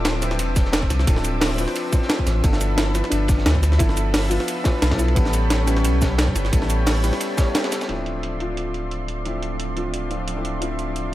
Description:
liquid drum and bass; 176 BPM; 4/4; swing 53% on 16ths; D dorian; A4 = 445 Hz
dark concert grand piano; melody; 0.0-0.2, 2.8-6.0 s; B3 to F4; -29 LUFS; left 1 dB; dub echo
warm grand piano; accompaniment; 0.0-11.1 s; F3 to E5; -27 LUFS; left 1 dB; ping-pong delay
lush unison pad; sustained chords; 0.0-11.1 s; F3 to D6; -31 LUFS; right 1 dB; chorus, sidechain pumping
warm sub bass; bass; 0.0-11.1 s; D1 to D2; -22 LUFS; equal
crunchy breakbeat drum kit; drums; 0.0-7.9 s; hi-hat, ride cymbal, snare drum; -30 LUFS; equal; high-pass filter on hats, high-pass filter on cymbals, high-pass filter on snare, high-pass filter on room
breakbeat sampler-style drum kit; drums; 0.1-11.0 s; cabasa, hi-hat, snare drum; -25 LUFS; right 1 dB; low-pass filter on snare, low-pass filter on hats, low-pass filter on perc, low-pass filter on cymbals
electronic kick drum; drums; 0.6-7.5 s; -20 LUFS; equal
studio reverb; -19 LUFS; side -15 dB against mid
0.0-7.9 A section; 7.9-11.1 B section
drop 0.0-7.9
0.0 Dm9; 2.4 G13; 5.2 A9; 7.9 Dm9

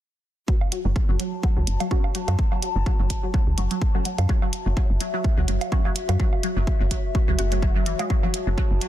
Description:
minimal techno; 126 BPM; 4/4; swing 55% on 16ths; F# minor; A4 = 440 Hz
resonant blip pluck; riff; 0.5-8.8 s; E3 to F#4; -30 LUFS; equal; phaser, ensemble chorus, sidechain pumping, tape echo
electronic kick drum; drums; 0.5-8.7 s; -22 LUFS; equal; overdrive
warbly tape-like pad; texture; 1.2-8.9 s; F#4 to A5; -32 LUFS; left 3 dB; chorus, built-in reverb, sidechain pumping
woodblock and congas; percussion; 0.6-8.3 s; -34 LUFS; right 8 dB; tape echo
electronic hi-hat; drums; 0.7-8.9 s; -32 LUFS; right 1 dB
woody FM bass; bass; 0.9-8.8 s; F#1 to F#2; -22 LUFS; equal; sidechain pumping
filtered dub chord stab; stabs; 1.9-7.6 s; A3 to F#4; -37 LUFS; right 2 dB; phaser, analog chorus, tape echo
little or no reverb; dense, heavily limited modern master; -20 LUFS; side -12 dB against mid
0.5-8.9 A section
0.5 F#m

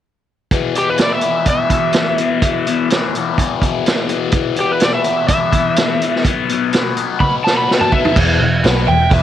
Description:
blues rock power trio and southern rock; 126 BPM; 4/4; straight; A4 = 440 Hz
cranked stack guitar; riff; 0.5-9.2 s; E2 to B3; -18 LUFS; left 8 dB; overdrive, phaser
vintage drum kit; drums; 0.5-9.2 s; crash cymbal, hi-hat, kick drum, snare drum, toms; -17 LUFS; right 2 dB
overdriven slide guitar; melody; 0.8-9.2 s; G4 to B5; -18 LUFS; right 1 dB; tape echo
vintage muted picked electric bass; bass; 8.2-9.2 s; E1 to B1; -15 LUFS; right 2 dB
lead guitar through a small cranked amp; second line; 8.9-9.2 s; B4 to E5; -22 LUFS; right 14 dB; overdrive
light reverb; 1960s-style stereo with parts hard left and right; -13 LUFS; side -11 dB against mid
0.5-8.2 A section; 8.2-9.2 B section
drum fill 7.2-8.2
0.5 E5; 6.2 B5; 8.2 Em

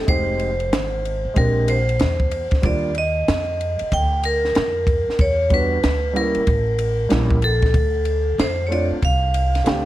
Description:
hip hop, jazz-hop; 94 BPM; 4/4; swing 64% on 16ths; A4 = 441 Hz
vibraphone with hard mallets; melody; 0.0-9.9 s; A4 to G5; -22 LUFS; right 1 dB
dark baby grand piano; accompaniment; 0.0-9.9 s; G3 to G4; -25 LUFS; right 1 dB
upright bass; bass; 0.1-9.9 s; F1 to F2; -22 LUFS; equal
compact cocktail drum kit; drums; 0.1-9.9 s; hi-hat, kick drum, ride cymbal, snare drum; -22 LUFS; equal
small room ambience; vinyl crackle; -17 LUFS; side -15 dB against mid
0.0-9.9 A section
0.1 Fm7; 1.4 Bb13; 2.6 Ebmaj7sus2; 5.2 Em9; 6.5 A7b9; 7.7 Dm7

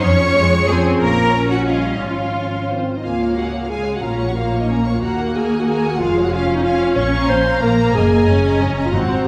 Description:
classical, dramatic, fast romantic movement for symphony orchestra; 183 BPM; 3/4; straight; Db major; A4 = 440 Hz
warm symphonic violin section; melody; 0.0-9.3 s; C5 to Db6; -30 LUFS; equal
rich studio violin section; second line; 0.0-9.3 s; Gb4 to Db6; -29 LUFS; equal
rich symphonic viola section; accompaniment; 0.0-9.3 s; Ab3 to F4; -24 LUFS; equal
dark French horn section; sustained chords; 0.0-2.9 s; Eb3 to Db4; -26 LUFS; equal
rich symphonic cello section; bass; 0.0-9.3 s; Eb2 to Db5; -24 LUFS; equal
rich symphonic double bass section; bass; 0.0-9.2 s; F1 to F2; -24 LUFS; equal
mellow clarinet; second line; 2.7-9.3 s; C4 to Db5; -22 LUFS; equal
timpani; percussion; 8.9-9.2 s; Ab2; -24 LUFS; equal
wet recital hall reverb, RT60 1.4 s; recorded in a church or concert hall; -17 LUFS; mono
0.0-3.0 A section; 3.0-9.3 B section
0.0 Db/F; 1.0 Bbm; 1.7 Eb7/Bb; 2.0 Db/Ab; 2.7 Ab; 3.0 Db; 4.0 Bbm; 5.0 Ebm; 6.0 Db/F; 7.0 Bbm; 8.0 Ebm7/Gb; 8.9 Ab9

